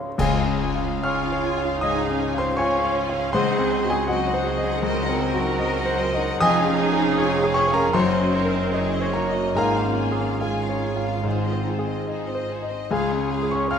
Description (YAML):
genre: classical, romantic movement for piano and orchestra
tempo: 69-82 BPM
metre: 4/4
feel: rubato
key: Db major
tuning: A4 = 438 Hz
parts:
  - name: clear concert grand piano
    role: melody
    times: 0.0-13.8 s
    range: Db2 to F6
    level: -22 LUFS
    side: left 1 dB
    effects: none
  - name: clear symphonic violin section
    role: melody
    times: 0.2-13.8 s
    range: C5 to Ab5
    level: -33 LUFS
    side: left 4 dB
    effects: none
  - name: rich studio violin section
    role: second line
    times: 0.2-13.8 s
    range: C4 to Eb5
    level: -32 LUFS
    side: left 2 dB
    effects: none
  - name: rich symphonic viola section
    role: accompaniment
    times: 0.2-13.8 s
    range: Gb3 to F4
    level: -30 LUFS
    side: right 4 dB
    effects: none
  - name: rich symphonic double bass section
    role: bass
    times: 0.2-13.8 s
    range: F1 to Db2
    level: -31 LUFS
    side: right 4 dB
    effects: none
  - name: clash cymbals and concert bass drum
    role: percussion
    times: 0.2-1.8 s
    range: none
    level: -32 LUFS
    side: equal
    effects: none
  - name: timpani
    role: percussion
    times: 0.2-4.4, 11.3-12.5 s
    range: Ab2 to Db3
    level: -32 LUFS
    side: left 4 dB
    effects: none
  - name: rich symphonic cello section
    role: bass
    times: 1.8-13.8 s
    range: F4 to Bb4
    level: -30 LUFS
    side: right 3 dB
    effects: none
room: moderate concert hall reverb, RT60 1.7 s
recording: none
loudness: -20 LUFS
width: side -7 dB against mid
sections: 0.2-13.8 A section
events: band accent 0.2-1.0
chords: 0.2 Db; 3.3 Cdim/Db; 6.4 Db/F; 7.9 Ebm7/Gb; 9.6 Db/Ab; 11.2 Ab; 12.9 Db